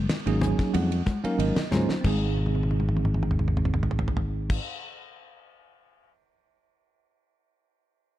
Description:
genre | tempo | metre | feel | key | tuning
electric jazz fusion | 92 BPM | 4/4 | straight | Ab mixolydian | A4 = 440 Hz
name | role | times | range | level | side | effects
fretless electric bass | bass | 0.0-4.6 s | Ab1 to Ab2 | -26 LUFS | left 1 dB | none
damped 70s drum kit | drums | 0.1-6.1 s | crash cymbal, hi-hat, kick drum, ride cymbal, snare drum, toms | -29 LUFS | equal | none
bell-like tine electric piano | accompaniment | 0.3-4.6 s | Gb3 to Ab5 | -29 LUFS | right 3 dB | medium stereo tremolo
congas | percussion | 0.4-4.6 s | none | -32 LUFS | left 3 dB | none
room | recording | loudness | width
light reverb, small room ambience | dark, warm production | -23 LUFS | side -14 dB against mid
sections
0.0-2.0 A section; 2.0-4.7 B section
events
tine electric piano fill 0.1-2.0; drum fill 1.7-2.0, 2.4-4.5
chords
0.0 Ab9sus4; 2.0 Ab

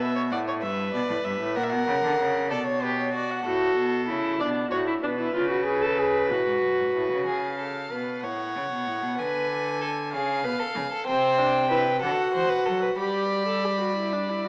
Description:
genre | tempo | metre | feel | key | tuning
classical, baroque-style fugue for string quartet | 63 BPM (dotted quarters) | 6/8 | straight | G major from 11.1 s | A4 = 442 Hz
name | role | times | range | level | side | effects
warm violin | melody | 0.0-3.5, 7.3-14.5 s | B4 to B5 | -32 LUFS | equal | none
warm violin | second line | 0.0-14.5 s | F#4 to D5 | -30 LUFS | equal | none
rich cello | bass | 0.0-14.5 s | F#2 to G3 | -33 LUFS | equal | none
warm viola | accompaniment | 3.5-7.2, 11.1-14.5 s | C4 to A4 | -29 LUFS | equal | none
room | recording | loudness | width
wet recital hall reverb, RT60 1.6 s | small speaker sound | -26 LUFS | mono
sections
0.0-7.3 A section; 7.3-14.5 B section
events
none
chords
0.0 N.C.; 0.6 Em/G; 1.6 F#/A#; 2.5 Bm; 3.5 F#m/A; 4.4 Bm; 5.3 C#7; 6.3 F#m; 7.3 C#7; 8.2 F#m/A; 9.2 G#dim/D; 10.1 C#; 11.1 Cmaj7sus2; 12.0 D (rootless); 13.0 G

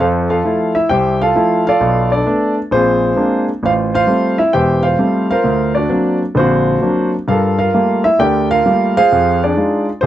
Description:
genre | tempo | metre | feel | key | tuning
solo jazz | 132 BPM | 4/4 | swing 66% on 8ths | F major | A4 = 439 Hz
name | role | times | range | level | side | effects
warm grand piano | solo | 0.0-10.1 s | E1 to G5 | -12 LUFS | equal | none
room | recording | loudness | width
little or no reverb | dry, close 1970s-style studio recording | -12 LUFS | side -12 dB against mid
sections
0.0-10.1 A section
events
none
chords
0.0 Fmaj7; 1.8 Bm7b5; 2.7 Bb9; 3.6 Am7; 5.4 D7alt; 7.3 Gm9; 9.1 Fm7

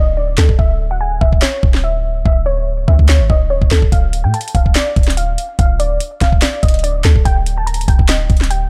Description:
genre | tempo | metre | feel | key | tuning
hip hop, trap | 144 BPM | 4/4 | half-time | unclear | A4 = 439 Hz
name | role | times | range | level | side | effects
warbly dusty pluck | melody | 0.0-8.7 s | A4 to Bb5 | -23 LUFS | equal | chorus, low-pass filter, tape echo
warm 808-style bass | bass | 0.0-8.7 s | D1 to A2 | -17 LUFS | equal | none
trap drum kit | drums | 0.4-8.6 s | handclaps, hi-hat, kick drum, snare drum | -16 LUFS | equal | none
room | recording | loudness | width
little or no reverb | dark, warm production | -14 LUFS | mono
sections
0.0-8.7 A section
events
break 0.0-3.9; filter sweep on synth pluck 0.0-8.7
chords
0.0 D5; 0.6 Dmaj7sus2; 3.9 Dm; 7.3 Eb/D

